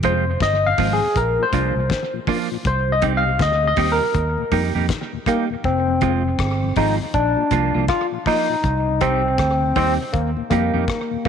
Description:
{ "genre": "roots reggae", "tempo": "80 BPM", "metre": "4/4", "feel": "swing 60% on 16ths", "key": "F dorian", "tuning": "A4 = 440 Hz", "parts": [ { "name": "barky tine electric piano", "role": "melody", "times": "0.0-11.3 s", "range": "Bb3 to F5", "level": "-20 LUFS", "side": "left 2 dB", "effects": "overdrive, wide subtle chorus, tape echo" }, { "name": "clean electric guitar", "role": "accompaniment", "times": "0.0-11.3 s", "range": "F3 to G4", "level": "-25 LUFS", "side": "right 13 dB", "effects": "tape echo" }, { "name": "mellow tonewheel organ", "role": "accompaniment", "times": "0.0-11.3 s", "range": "Eb2 to G4", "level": "-31 LUFS", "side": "left 11 dB", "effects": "chorus vibrato, slow rotary speaker, slapback echo" }, { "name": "fingered electric bass", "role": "bass", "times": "0.0-10.9 s", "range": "F1 to F2", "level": "-22 LUFS", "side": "right 1 dB", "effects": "none" }, { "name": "cloth-damped thuddy drum kit", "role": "drums", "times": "0.0-11.3 s", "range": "hi-hat, kick drum, rim click, snare drum", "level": "-26 LUFS", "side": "left 2 dB", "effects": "slapback echo" } ], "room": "light reverb, small room ambience", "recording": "1960s-style stereo with parts hard left and right", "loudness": "-17 LUFS", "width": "side -7 dB against mid", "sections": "0.0-5.6 A section; 5.6-11.3 B section", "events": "tine electric piano solo 0.0-5.6", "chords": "0.0 Fm; 1.2 Bb; 2.6 Cm; 4.1 Eb; 5.6 Fm; 7.1 Bb; 8.6 Cm; 10.1 Eb" }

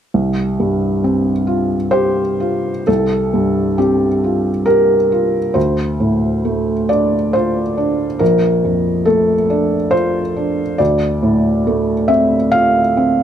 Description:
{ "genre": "neoclassical minimalist piano", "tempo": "68 BPM", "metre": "3/4", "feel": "rubato", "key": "unclear", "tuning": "A4 = 440 Hz", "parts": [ { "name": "felt-muted upright piano", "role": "solo", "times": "0.1-13.2 s", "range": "Bb1 to F5", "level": "-13 LUFS", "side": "equal", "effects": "none" } ], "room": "light reverb", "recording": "none", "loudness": "-13 LUFS", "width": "side -9 dB against mid", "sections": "0.2-2.9 A section; 2.9-13.2 B section", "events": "none", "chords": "0.2 Csus4; 5.6 Dm7; 8.2 Bbmaj7; 10.8 Dm7" }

